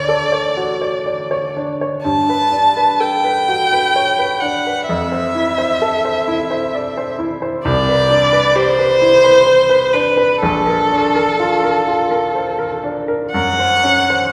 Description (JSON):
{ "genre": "classical, impressionist duo for violin and grand piano", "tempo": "43 BPM (dotted quarters)", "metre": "6/8", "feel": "uneven beats, rubato", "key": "unclear", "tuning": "A4 = 439 Hz", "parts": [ { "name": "warm violin", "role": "melody", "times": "0.0-14.3 s", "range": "A4 to A5", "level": "-17 LUFS", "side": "equal", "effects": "none" }, { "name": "bright baby grand piano", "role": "accompaniment", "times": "0.0-14.3 s", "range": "Bb1 to D5", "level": "-21 LUFS", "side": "equal", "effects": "none" } ], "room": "wet scoring stage reverb, RT60 1.6 s", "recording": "recorded in a church or concert hall", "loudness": "-15 LUFS", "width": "mono", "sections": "0.0-14.3 A section", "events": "none", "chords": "0.0 Dmaj7; 2.0 Gmaj9; 4.9 Fmaj7; 7.6 Cmaj9; 10.4 Bbmaj7; 13.3 Gb5" }